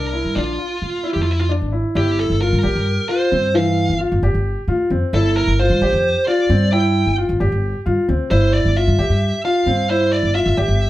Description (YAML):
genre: progressive instrumental, band music in an uneven meter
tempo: 264 BPM (eighths)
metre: 7/8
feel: straight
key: unclear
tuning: A4 = 441 Hz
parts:
  - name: high-gain lead guitar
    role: melody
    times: 0.0-10.9 s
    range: E4 to G5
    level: -20 LUFS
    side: right 1 dB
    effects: distortion
  - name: warm grand piano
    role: arpeggios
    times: 0.0-10.9 s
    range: E3 to G4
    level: -20 LUFS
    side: left 1 dB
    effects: none
  - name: upright bass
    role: bass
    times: 0.0-10.9 s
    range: G1 to Bb2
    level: -18 LUFS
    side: equal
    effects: none
room: moderate studio reverb, RT60 0.7 s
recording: band playing live in one room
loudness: -15 LUFS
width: side -15 dB against mid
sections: 0.0-2.0 A section; 2.0-10.9 B section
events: none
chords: 0.4 Bb; 2.0 C7sus4/G (rootless); 5.1 G7sus4; 8.3 Csus4/G (rootless)